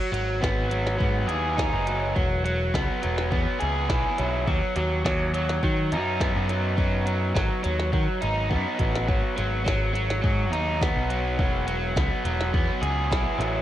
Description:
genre	indie rock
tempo	104 BPM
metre	4/4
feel	straight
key	E major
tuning	A4 = 441 Hz
part	overdriven electric guitar	riff	0.0-13.6 s	F#3 to G#4	-26 LUFS	right 1 dB	cassette tape
part	modern bright picked electric bass	bass	0.1-13.6 s	E1 to D#3	-27 LUFS	equal	none
part	glitchy drum kit	drums	0.1-13.5 s	hi-hat, kick drum, snare drum	-27 LUFS	equal	none
room	light reverb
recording	home recording on cassette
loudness	-22 LUFS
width	side -12 dB against mid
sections	0.0-13.6 A section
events	drum fill 8.5-9.1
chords	0.0 G#m7; 2.2 Eadd9; 4.5 B/D#; 9.1 G#m7; 11.4 Eadd9

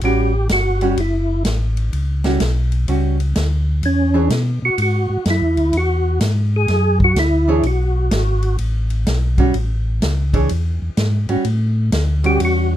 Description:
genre	soul jazz organ trio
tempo	126 BPM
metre	4/4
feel	swing 66% on 8ths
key	A mixolydian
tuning	A4 = 441 Hz
part	archtop guitar, miked and amplified	accompaniment	0.0-4.3, 7.5-12.8 s	E3 to C#5	-20 LUFS	right 3 dB	none
part	mellow tonewheel organ	bass	0.0-12.8 s	F#1 to B2	-17 LUFS	equal	slow rotary speaker
part	vintage drum kit	drums	0.0-12.5 s	hi-hat, kick drum, ride cymbal, snare drum	-23 LUFS	equal	none
part	percussive tonewheel organ	melody	0.1-8.6, 12.3-12.7 s	C#4 to G#4	-18 LUFS	equal	chorus vibrato, slow rotary speaker
room	light reverb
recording	close, detailed microphones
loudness	-15 LUFS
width	side -12 dB against mid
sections	0.0-11.4 A section; 11.4-12.8 B section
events	tonewheel organ solo 11.4-12.8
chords	0.0 A13; 3.8 E9; 9.5 A; 10.5 E69; 11.4 A13

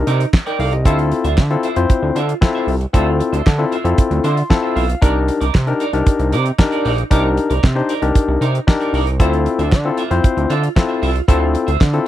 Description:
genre	early-eighties boogie funk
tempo	115 BPM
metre	4/4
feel	straight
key	unclear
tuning	A4 = 439 Hz
part	barky tine electric piano	accompaniment	0.0-12.1 s	C4 to C6	-18 LUFS	left 4 dB	overdrive
part	fat analog bass	bass	0.0-12.0 s	Bb1 to D3	-18 LUFS	right 1 dB	none
part	clean electric guitar	riff	0.1-12.0 s	Eb4 to E5	-24 LUFS	right 6 dB	lush chorus
part	damped 70s drum kit	drums	0.1-12.1 s	handclaps, hi-hat, kick drum, snare drum	-14 LUFS	right 1 dB	none
room	little or no reverb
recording	dry, close 1970s-style studio recording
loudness	-14 LUFS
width	side -13 dB against mid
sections	0.0-12.1 A section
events	tine electric piano fill 4.0-5.0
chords	0.0 Cm9; 0.9 Dm9; 5.0 Cm9; 9.2 Dm9

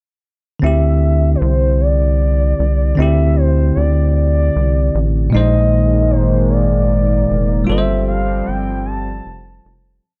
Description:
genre	slow six-eight R&B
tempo	51 BPM (dotted quarters)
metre	6/8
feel	straight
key	D minor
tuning	A4 = 441 Hz
part	gliding portamento lead	melody	0.6-9.7 s	B4 to A5	-23 LUFS	equal	chorus, phaser
part	bell-like tine electric piano	accompaniment	0.6-10.0 s	Bb2 to C5	-20 LUFS	equal	none
part	rubbery square bass	bass	0.6-10.0 s	F1 to D2	-18 LUFS	equal	none
part	chorused pulse-width pad	sustained chords	5.3-10.0 s	Eb3 to C4	-23 LUFS	equal	subtle chorus
room	little or no reverb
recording	dry, gritty hardware recording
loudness	-15 LUFS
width	mono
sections	0.6-10.0 verse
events	fade-out 7.7-10.0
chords	0.6 D9sus4; 5.3 Bb9sus4; 7.7 G9sus4

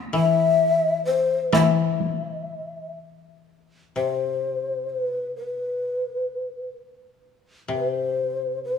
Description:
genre	japanese traditional, Japanese chamber music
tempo	64 BPM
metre	2/4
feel	rubato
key	unclear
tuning	A4 = 439 Hz
part	koto	accompaniment	0.0-8.8 s	C3 to F#3	-25 LUFS	left 5 dB	none
part	breathy mellow long shakuhachi	melody	0.2-8.8 s	B4 to E5	-23 LUFS	left 3 dB	none
part	taiko ensemble	percussion	1.5-2.2 s	none	-28 LUFS	right 3 dB	none
room	light reverb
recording	small room ambience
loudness	-21 LUFS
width	side -7 dB against mid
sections	0.0-3.5 A section; 3.5-8.8 B section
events	none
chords	none

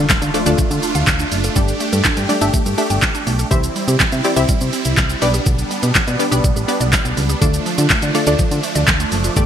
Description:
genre	dance-pop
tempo	123 BPM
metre	4/4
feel	straight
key	D minor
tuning	A4 = 439 Hz
part	wide unison pluck	accompaniment	0.0-9.5 s	A3 to E5	-20 LUFS	left 2 dB	sidechain pumping
part	supersaw chords	sustained chords	0.0-9.5 s	F3 to G4	-23 LUFS	right 1 dB	phaser, sidechain pumping
part	hollow square pluck	arpeggios	0.0-9.5 s	D3 to G5	-26 LUFS	right 4 dB	chorus, sidechain pumping, digital delay
part	solid FM bass	bass	0.0-9.5 s	F#1 to D3	-19 LUFS	equal	sidechain pumping
part	impact	sound effects	0.0-1.6 s	none	-32 LUFS	left 1 dB	none
part	pop drum kit	drums	0.1-9.5 s	handclaps, hi-hat, kick drum, shaker, snare drum	-17 LUFS	equal	gated reverb
room	light reverb, digital ambience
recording	bright 1980s-style digital production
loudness	-14 LUFS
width	side -9 dB against mid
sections	0.0-9.5 A section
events	impact 0.0-1.6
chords	0.0 Dm; 1.6 Gsus2; 3.5 C; 5.2 G/B; 7.4 Dm

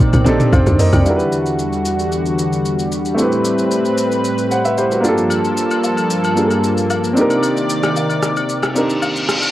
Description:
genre	amapiano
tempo	113 BPM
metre	4/4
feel	straight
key	E minor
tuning	A4 = 441 Hz
part	clear baby grand piano	accompaniment	0.0-9.5 s	G3 to G5	-18 LUFS	right 1 dB	cassette tape
part	lush unison pad	sustained chords	0.0-9.5 s	E2 to D5	-18 LUFS	equal	chorus, sidechain pumping, cassette tape
part	smooth R&B drum kit	drums	0.0-9.5 s	hi-hat, kick drum, rim click, shaker, toms	-18 LUFS	equal	cassette tape
part	tight log drum bass	bass	0.1-1.1 s	Bb1 to D2	-16 LUFS	equal	none
part	agogo bells and woodblock	percussion	0.1-1.0, 5.3-9.5 s	none	-26 LUFS	left 4 dB	none
part	reverse cymbal	sound effects	8.7-9.5 s	none	-20 LUFS	left 1 dB	none
room	light reverb, digital ambience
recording	home recording on cassette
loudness	-14 LUFS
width	side -14 dB against mid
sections	0.0-1.1 A section; 1.1-9.5 B section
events	drop 0.0-1.1; drum fill 0.0-1.1; reverse cymbal 8.7-9.5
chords	0.0 Cm9; 1.1 Em9; 3.2 Am9; 5.0 Gm9; 7.2 Cm9

